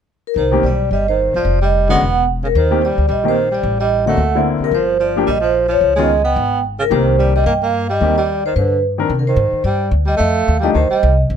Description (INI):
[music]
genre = jazz, small-group swing and bop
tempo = 219 BPM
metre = 4/4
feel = swing 59% on 8ths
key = C minor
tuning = A4 = 440 Hz
[part]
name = vibraphone with medium mallets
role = melody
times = 0.3-11.2 s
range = Bb4 to G5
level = -17 LUFS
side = moving between left 2 dB and right 6 dB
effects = auto-pan, plate reverb
[part]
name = breathy tenor saxophone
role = second line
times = 0.4-11.2 s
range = C3 to Cb4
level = -21 LUFS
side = right 3 dB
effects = none
[part]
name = upright bass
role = bass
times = 0.4-11.4 s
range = E1 to C3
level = -18 LUFS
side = left 1 dB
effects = none
[part]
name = warm baby grand piano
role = accompaniment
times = 0.5-10.7 s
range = D3 to Bb4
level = -19 LUFS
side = left 6 dB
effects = none
[sound]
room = light reverb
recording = none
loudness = -13 LUFS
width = side -8 dB against mid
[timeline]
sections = 0.4-9.1 A section; 9.1-11.4 B section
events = none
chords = 0.4 Cm; 1.4 Fm9; 2.0 Esus2; 2.5 Eb6; 3.6 Am7b5; 4.2 D7b13; 4.7 Gm7; 5.8 Db7sus2; 6.9 Cm7; 8.6 G; 9.1 Cmadd9; 10.2 F13